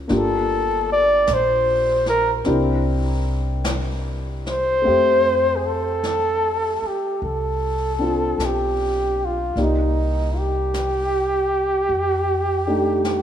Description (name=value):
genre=jazz ballad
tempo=51 BPM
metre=4/4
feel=swing 67% on 8ths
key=F major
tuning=A4 = 440 Hz
part: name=dark upright piano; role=accompaniment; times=0.0-13.2 s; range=A3 to E5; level=-26 LUFS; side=left 1 dB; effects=none
part: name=upright bass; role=bass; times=0.0-13.2 s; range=G1 to F2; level=-26 LUFS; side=equal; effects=none
part: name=jazz brush drum kit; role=drums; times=0.1-13.2 s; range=brushed snare drum, hi-hat, snare drum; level=-34 LUFS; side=left 1 dB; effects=none
part: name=breathy flugelhorn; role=melody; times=0.2-13.2 s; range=Eb4 to D5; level=-19 LUFS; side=equal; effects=none
room=moderate lush hall reverb, RT60 2.3 s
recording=rough home demo mix, small room ambience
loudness=-18 LUFS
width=side -9 dB against mid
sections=0.0-4.9 A section; 4.9-13.2 B section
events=flugelhorn solo 0.0-4.9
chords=0.1 Gm7; 2.5 C9; 4.9 Fmaj9; 9.6 Cm9; 11.9 F13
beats=| 0.12 1.29 2.48 3.67 | 4.86 6.04 7.21 8.39 | 9.56 10.73 11.89 13.06